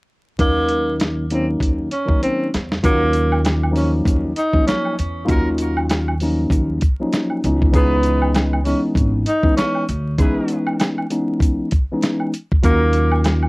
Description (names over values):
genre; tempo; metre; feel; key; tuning
hip hop, boom-bap hip-hop; 98 BPM; 4/4; swing 57% on 16ths; Eb phrygian; A4 = 445 Hz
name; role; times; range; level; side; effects
breathy tenor saxophone; melody; 0.4-13.2 s; Bb3 to Eb4; -21 LUFS; right 1 dB; high-pass filter, low-pass filter, tape echo
mellow tine electric piano; accompaniment; 0.4-13.5 s; Eb3 to F4; -21 LUFS; left 1 dB; cassette tape, high-pass filter, low-pass filter
upright bass; bass; 0.4-13.5 s; Ab1 to Fb2; -20 LUFS; equal; none
dusty soul sampler-style drum kit; drums; 0.4-13.4 s; hi-hat, kick drum, snare drum; -19 LUFS; equal; cassette tape
warm horn section; stabs; 2.8-12.8 s; Bb3 to Cb5; -30 LUFS; right 1 dB; high-pass filter, low-pass filter, cassette tape, tape echo
tube shaker and woodblock; percussion; 2.8-13.5 s; none; -27 LUFS; right 1 dB; none
room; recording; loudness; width
light reverb; home recording on cassette, vinyl crackle; -16 LUFS; side -24 dB against mid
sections
0.4-2.8 A section; 2.8-13.5 B section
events
drum fill 2.2-2.8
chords
0.4 Ebm7; 2.8 Ebm9; 7.4 Dbm9; 12.6 Ebm9